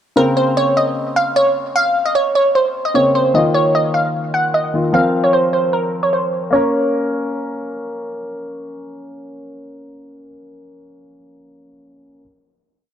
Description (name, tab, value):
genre	hip hop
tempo	151 BPM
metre	4/4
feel	half-time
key	Bb minor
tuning	A4 = 440 Hz
part	glassy wavetable pluck	melody	0.2-7.7 s	Bb4 to Gb5	-15 LUFS	right 1 dB	chorus, analog delay
part	warm concert grand piano	accompaniment	0.2-12.2 s	Db3 to Bb4	-20 LUFS	left 2 dB	none
room	moderate plate reverb, RT60 3.1 s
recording	dark, warm production, low-pass filter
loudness	-14 LUFS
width	side -9 dB against mid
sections	0.2-6.5 breakdown; 6.5-9.7 final chord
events	filter sweep 0.2-6.5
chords	0.2 Bbmadd9; 3.3 Ebsus2; 4.9 Fsus4; 6.5 Bbm